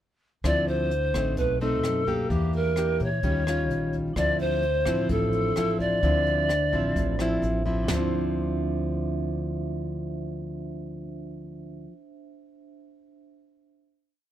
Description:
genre	bossa nova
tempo	129 BPM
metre	4/4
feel	straight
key	D minor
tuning	A4 = 440 Hz
part	nylon-string guitar	accompaniment	0.4-12.0 s	A2 to G4	-28 LUFS	left 1 dB	none
part	upright bass	bass	0.4-11.9 s	A1 to Bb2	-31 LUFS	equal	none
part	jazz brush drum kit	drums	0.4-8.0 s	hi-hat, kick drum, rim click, snare drum, toms	-34 LUFS	right 1 dB	none
part	breathy polished pan flute	melody	0.5-7.4 s	G4 to D5	-26 LUFS	equal	none
part	vibraphone with medium hard mallets	accompaniment	4.1-14.1 s	D4 to E5	-37 LUFS	right 9 dB	none
room	little or no reverb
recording	close, detailed microphones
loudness	-23 LUFS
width	side -11 dB against mid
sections	0.4-7.9 A section; 7.9-11.6 final chord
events	none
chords	0.4 Dm9; 1.4 B7b9; 2.3 Em7b5; 3.2 Eb9; 4.2 Dm9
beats	| 0.44 0.91 1.37 1.84 | 2.31 2.77 3.24 3.70 | 4.17 4.63 5.10 5.56 | 6.03 6.49 6.96 7.42 | 7.88 8.35 8.81 9.27 | 9.73 10.20 10.66 11.12

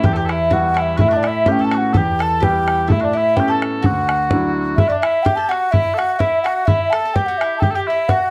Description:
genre	celtic folk, Celtic polka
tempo	126 BPM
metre	2/4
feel	swing 53% on 8ths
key	D major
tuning	A4 = 442 Hz
part	mellow baroque flute	melody	0.0-8.3 s	D5 to A5	-21 LUFS	equal	none
part	mandolin	second line	0.0-8.3 s	D4 to A4	-26 LUFS	equal	none
part	mellow small bagpipes	second line	0.0-8.3 s	D4 to A4	-27 LUFS	equal	none
part	warm concert grand piano	accompaniment	0.0-4.8 s	D2 to E4	-23 LUFS	equal	none
part	bodhran	percussion	0.0-8.2 s	none	-21 LUFS	equal	none
room	moderate studio ambience, RT60 0.5 s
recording	none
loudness	-17 LUFS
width	mono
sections	0.0-4.8 A section; 4.8-8.3 A section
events	none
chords	0.0 Em; 1.0 Aadd9; 1.9 Em; 2.9 Aadd9; 3.8 Dadd9; 4.8 N.C.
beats	| 0.04 0.51 | 0.99 1.46 | 1.94 2.41 | 2.89 3.36 | 3.83 4.31 | 4.78 5.26 | 5.73 6.21 | 6.68 7.15 | 7.62 8.10

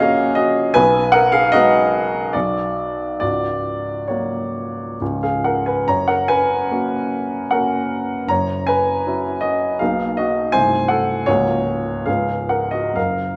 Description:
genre	classical, romantic character piece for solo piano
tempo	62-83 BPM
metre	3/4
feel	rubato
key	F# major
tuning	A4 = 440 Hz
part	warm upright piano	solo	0.0-13.4 s	C1 to A#5	-19 LUFS	equal	none
room	wet recital hall reverb, RT60 1.4 s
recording	none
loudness	-19 LUFS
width	mono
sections	0.0-13.4 A section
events	none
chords	0.0 F#/A#; 0.8 B6; 2.3 Bm; 3.2 F#/C#; 5.0 C#; 5.9 F#; 8.3 F#5; 9.8 Bmaj7; 10.5 Cdim7; 11.3 F#/C#; 12.1 C#7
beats	0.01 | 0.76 1.53 2.34 | 3.21 4.11 5.00 | 5.88 6.70 7.51 | 8.30 9.05 9.80 | 10.53 11.28 12.07 | 12.97

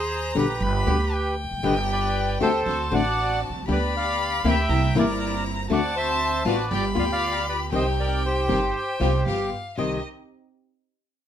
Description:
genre	tango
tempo	118 BPM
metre	4/4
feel	rubato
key	unclear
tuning	A4 = 440 Hz
part	bandoneon	melody	0.0-10.0 s	G4 to G5	-26 LUFS	right 1 dB	none
part	warm violin	second line	0.0-10.0 s	Eb5 to B5	-29 LUFS	left 4 dB	none
part	upright bass	bass	0.0-10.0 s	E1 to Eb2	-27 LUFS	right 2 dB	none
part	flamenco guitar	accompaniment	0.3-10.0 s	B2 to G4	-24 LUFS	left 4 dB	none
part	rich studio string section	stabs	1.6-10.0 s	Bb3 to G4	-31 LUFS	left 2 dB	none
room	moderate studio reverb, RT60 0.6 s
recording	none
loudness	-21 LUFS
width	side -10 dB against mid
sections	0.0-9.8 A section; 9.8-11.3 B section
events	none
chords	0.0 Eb; 0.6 G; 2.7 D7; 3.7 G/D; 4.7 C7; 5.7 D7; 6.7 G7; 7.7 Cm; 9.3 G7; 9.8 Cm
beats	0.10 0.61 1.12 | 1.64 2.15 2.66 3.17 | 3.67 4.18 4.69 5.20 | 5.70 6.20 6.71 7.22 | 7.73 8.24 8.75 9.27 | 9.78

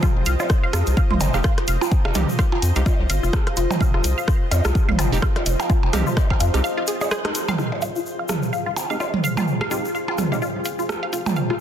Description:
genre	minimal techno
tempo	127 BPM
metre	4/4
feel	swing 57% on 16ths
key	F minor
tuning	A4 = 440 Hz
part	resonant blip pluck	riff	0.0-11.5 s	Eb4 to F5	-27 LUFS	left 1 dB	phaser, sidechain pumping, tape echo
part	electronic kick drum	drums	0.0-6.4 s	none	-19 LUFS	equal	overdrive
part	egg shaker	percussion	0.0-11.5 s	none	-35 LUFS	left 5 dB	none
part	minimal click drum kit	percussion	0.0-11.6 s	percussion blips, rim click, toms	-25 LUFS	right 2 dB	soft clipping on snare
part	bubbling stepped-filter texture	texture	0.0-11.6 s	Ab4 to Eb5	-37 LUFS	equal	chorus, built-in reverb, sidechain pumping
part	granular cloud pad	texture	0.0-11.6 s	F4 to G5	-31 LUFS	equal	built-in reverb, sidechain pumping
part	round analog bass	bass	0.2-11.6 s	F1 to F2	-22 LUFS	equal	sidechain pumping, high-pass filter
part	booming analog drum machine	drums	0.3-11.2 s	hi-hat, rim click	-29 LUFS	equal	low-pass filter on hats, soft clipping on snare, low-pass filter on snare
part	wavetable chord stab	stabs	1.3-10.4 s	Ab3 to G4	-31 LUFS	right 2 dB	phaser, cassette tape, ping-pong delay
room	light reverb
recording	dense, heavily limited modern master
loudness	-18 LUFS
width	side -9 dB against mid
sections	0.0-7.6 A section; 7.6-11.6 B section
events	break 6.6-7.6; band accent 7.1; filter sweep on synth stab 7.6-11.6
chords	0.0 F7(no3); 7.6 Fm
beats	| 0.03 0.50 0.97 1.44 | 1.92 2.39 2.86 3.33 | 3.81 4.28 4.75 5.22 | 5.70 6.17 6.64 7.11 | 7.58 8.06 8.53 9.00 | 9.47 9.95 10.42 10.89 | 11.36

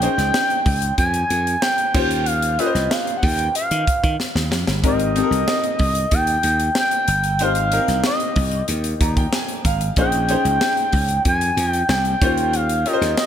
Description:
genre	polished 1980s jazz-funk pop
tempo	93 BPM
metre	4/4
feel	straight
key	Ab major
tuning	A4 = 440 Hz
part	expressive synth lead	melody	0.0-13.3 s	Eb5 to Ab5	-20 LUFS	right 1 dB	chorus
part	clear concert grand piano	accompaniment	0.0-13.3 s	C4 to Bb5	-24 LUFS	left 4 dB	wide subtle chorus
part	slap bass	bass	0.0-13.1 s	G1 to Eb3	-22 LUFS	equal	none
part	crisp fusion drum kit	drums	0.0-13.3 s	crash cymbal, hi-hat, kick drum, snare drum	-22 LUFS	equal	gated reverb
room	light reverb, small room ambience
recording	bright 1980s-style digital production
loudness	-17 LUFS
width	side -9 dB against mid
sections	0.0-13.3 A section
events	drum fill 4.2-4.8; grand piano fill 8.7-10.0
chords	0.0 Bbm11 (rootless); 1.9 Eb13; 4.8 Abmaj9; 10.0 Bbm11; 12.2 Eb13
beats	0.34 0.98 1.62 | 2.27 2.91 3.55 4.19 | 4.84 5.48 6.12 6.76 | 7.41 8.05 8.69 9.33 | 9.97 10.61 11.26 11.90 | 12.54 13.18

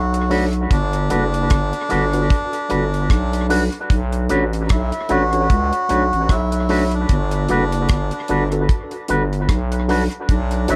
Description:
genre	lovers rock reggae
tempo	75 BPM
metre	4/4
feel	swing 57% on 16ths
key	unclear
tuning	A4 = 437 Hz
part	melodica	melody	0.0-10.8 s	D4 to F#4	-26 LUFS	equal	tape echo
part	growling FM bass	bass	0.0-10.8 s	F#1 to C#2	-23 LUFS	equal	none
part	electric guitar with an envelope filter	stabs	0.1-10.8 s	G3 to B4	-28 LUFS	equal	dub echo
part	deep reggae drum kit	drums	0.1-10.8 s	hi-hat, kick drum, rim click	-23 LUFS	equal	none
part	mellow tine electric piano	accompaniment	0.3-10.8 s	D4 to C#5	-27 LUFS	equal	overdrive, dub echo
room	light reverb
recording	dark, warm production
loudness	-19 LUFS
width	mono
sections	0.0-10.8 A section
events	none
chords	0.0 Bm7; 0.7 Gmaj7; 3.9 Bm7; 7.1 Gmaj7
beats	| 0.71 1.51 2.31 3.10 | 3.90 4.70 5.50 6.30 | 7.10 7.89 8.69 9.49 | 10.29

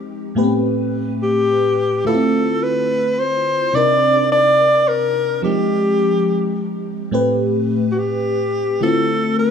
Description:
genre	R&B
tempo	71 BPM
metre	4/4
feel	straight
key	A minor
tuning	A4 = 445 Hz
part	FM electric piano with soft pad layer	accompaniment	0.0-9.5 s	A2 to B4	-19 LUFS	equal	chorus, phaser
part	breathy alto saxophone	melody	1.2-9.5 s	F#4 to D5	-16 LUFS	left 1 dB	tape echo
room	light reverb, small room ambience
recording	none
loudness	-15 LUFS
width	side -7 dB against mid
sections	0.0-9.5 A section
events	none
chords	0.4 Am9; 2.1 Dm9; 3.7 Cm9; 5.4 Fm9; 7.1 Am9; 8.8 Dm9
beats	| 0.37 1.21 2.06 2.90 | 3.75 4.59 5.44 6.28 | 7.13 7.97 8.82

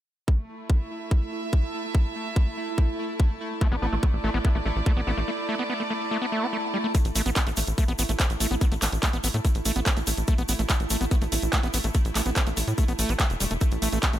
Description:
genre	psychedelic trance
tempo	144 BPM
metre	4/4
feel	straight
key	unclear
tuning	A4 = 442 Hz
part	pulsing gated texture	sustained chords	0.5-14.2 s	A3 to G4	-34 LUFS	right 3 dB	chorus, built-in reverb, sidechain pumping
part	electronic kick drum	drums	0.3-14.1 s	none	-22 LUFS	equal	none
part	rich chamber string section	texture	0.3-14.2 s	A3 to A5	-35 LUFS	equal	sidechain pumping
part	overdriven acid bass	riff	3.6-14.2 s	G3 to C4	-31 LUFS	moving between left 3 dB and right 3 dB	distortion, auto-pan, sidechain pumping, tape echo
part	tight sequencer bass	bass	3.7-14.2 s	E1 to A2	-27 LUFS	equal	none
part	drum and bass drum kit	drums	6.9-14.2 s	handclaps, hi-hat	-29 LUFS	right 1 dB	none
part	egg shaker	percussion	6.9-14.2 s	none	-35 LUFS	left 2 dB	none
room	little or no reverb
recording	none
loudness	-23 LUFS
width	side -12 dB against mid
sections	0.3-6.9 A section; 6.9-14.2 B section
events	break 5.3-6.9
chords	0.3 A5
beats	| 0.28 0.70 1.11 1.53 | 1.95 2.36 2.78 3.20 | 3.61 4.03 4.45 4.86 | 5.28 5.70 6.11 6.53 | 6.95 7.36 7.78 8.20 | 8.61 9.03 9.45 9.86 | 10.28 10.70 11.11 11.53 | 11.95 12.36 12.78 13.20 | 13.61 14.03

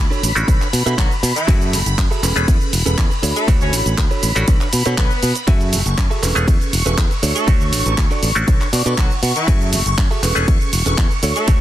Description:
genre	filtered disco house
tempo	120 BPM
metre	4/4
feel	straight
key	unclear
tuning	A4 = 440 Hz
part	bright clav	accompaniment	0.0-11.6 s	A3 to G#5	-25 LUFS	left 1 dB	phaser, sidechain pumping
part	phased string machine	sustained chords	0.0-11.6 s	B5 to C#6	-25 LUFS	equal	ensemble chorus, phaser, sidechain pumping
part	modern bright fingered electric bass	bass	0.0-11.6 s	E1 to B2	-19 LUFS	equal	sidechain pumping
part	direct-recorded clean electric guitar	riff	0.1-11.6 s	C#4 to F#5	-26 LUFS	right 5 dB	analog chorus, sidechain pumping
part	house drum kit	drums	0.1-11.6 s	handclaps, hi-hat, ride cymbal, shaker	-22 LUFS	right 2 dB	sidechain pumping on hats, sidechain pumping on perc, sidechain pumping on cymbals
part	electronic kick drum	drums	0.5-11.6 s	none	-16 LUFS	equal	none
part	clear horn section	melody	1.0-11.5 s	E3 to C#5	-25 LUFS	left 2 dB	vintage 12-bit sampler grit, sidechain pumping, digital delay
room	digital ambience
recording	dense, heavily limited modern master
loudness	-14 LUFS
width	side -13 dB against mid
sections	0.0-11.6 A section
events	clean electric guitar fill 8.5-9.5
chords	0.5 Bm9; 1.5 F#m9; 2.2 Amaj9/E; 3.2 Dmaj7; 4.5 Bm9; 5.5 F#m9; 6.2 Amaj9/E; 7.2 Dmaj7; 8.5 Bm9; 9.5 F#m9; 10.2 Amaj9/E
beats	0.48 0.98 | 1.48 1.98 2.48 2.98 | 3.48 3.98 4.48 4.98 | 5.48 5.98 6.48 6.98 | 7.48 7.98 8.48 8.98 | 9.48 9.98 10.48 10.98 | 11.48

